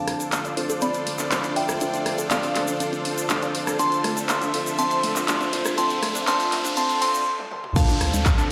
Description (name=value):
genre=progressive house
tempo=121 BPM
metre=4/4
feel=straight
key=D minor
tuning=A4 = 440 Hz
part: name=glassy synth bell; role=melody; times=0.0-8.5 s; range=D5 to C6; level=-28 LUFS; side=equal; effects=chorus, low-pass filter, digital delay
part: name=supersaw pad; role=sustained chords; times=0.0-8.5 s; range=C4 to E5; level=-33 LUFS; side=equal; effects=sidechain pumping
part: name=chorused polysynth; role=stabs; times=0.0-8.5 s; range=D4 to C5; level=-32 LUFS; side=equal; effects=cassette tape, sidechain pumping, delay
part: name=riser, noise sweep and downlifter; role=sound effects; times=3.2-8.5 s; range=none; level=-36 LUFS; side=equal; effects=none
part: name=pop drum kit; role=drums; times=0.1-8.5 s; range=crash cymbal, handclaps, hi-hat, rim click, toms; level=-30 LUFS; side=equal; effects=none
part: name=egg shaker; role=percussion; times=0.2-8.5 s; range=none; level=-36 LUFS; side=equal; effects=none
part: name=analog pluck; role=arpeggios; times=0.3-8.4 s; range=A3 to A4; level=-35 LUFS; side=equal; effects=chorus, sidechain pumping, delay
part: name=electronic kick drum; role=drums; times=7.8-8.4 s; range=none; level=-22 LUFS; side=equal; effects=none
part: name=congas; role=percussion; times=7.9-8.2 s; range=none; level=-33 LUFS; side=equal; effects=sidechain pumping on perc
part: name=round analog bass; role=bass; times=8.0-8.2 s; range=D2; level=-26 LUFS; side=equal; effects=sidechain pumping
room=wet digital room reverb, RT60 1.2 s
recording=played on a big sound system in a bare room, stone room reverb, high-pass filter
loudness=-23 LUFS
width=mono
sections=0.0-7.8 A section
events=build-up 0.0-7.8; filter sweep on synth arpeggio sound 0.0-7.8; filter sweep on analog polysynth 0.0-7.8; filter sweep on synth bell 0.0-7.8; riser 3.2-7.3; noise sweep 5.8-7.8; stop 7.3-7.8; drum fill 7.4-7.8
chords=0.0 Dm7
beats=0.32 0.82 1.31 | 1.81 2.31 2.80 3.30 | 3.79 4.29 4.79 5.28 | 5.78 6.27 6.77 7.26 | 7.76 8.26